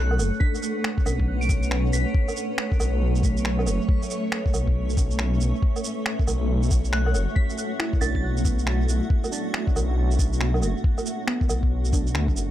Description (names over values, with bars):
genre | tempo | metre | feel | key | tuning
future garage | 138 BPM | 4/4 | swing 63% on 16ths | B minor | A4 = 440 Hz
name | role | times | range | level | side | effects
soft synth bell | melody | 0.0-2.3, 6.9-8.2 s | F#6 to D7 | -35 LUFS | equal | chorus, phaser, dub echo
muted felt-like synth keys | accompaniment | 0.0-12.5 s | F#3 to E4 | -33 LUFS | right 2 dB | chorus, sidechain pumping, tape echo
granular cloud pad | sustained chords | 0.0-12.5 s | A3 to F#5 | -30 LUFS | equal | built-in reverb, vintage 12-bit sampler grit, sidechain pumping
dark detuned saw bass | bass | 0.0-12.5 s | F#1 to D2 | -23 LUFS | equal | sidechain pumping
backwards swelling texture | texture | 0.0-12.5 s | C#4 to C#5 | -38 LUFS | left 1 dB | built-in reverb
electronic woodblock, shaker and finger snaps | drums | 0.1-12.5 s | none | -30 LUFS | right 2 dB | studio ambience, tape echo
electronic kick drum | drums | 0.4-12.3 s | none | -23 LUFS | equal | studio ambience
room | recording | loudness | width
little or no reverb | echo-heavy mix | -21 LUFS | side -13 dB against mid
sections
0.0-12.5 A section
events
none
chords
0.0 Bm9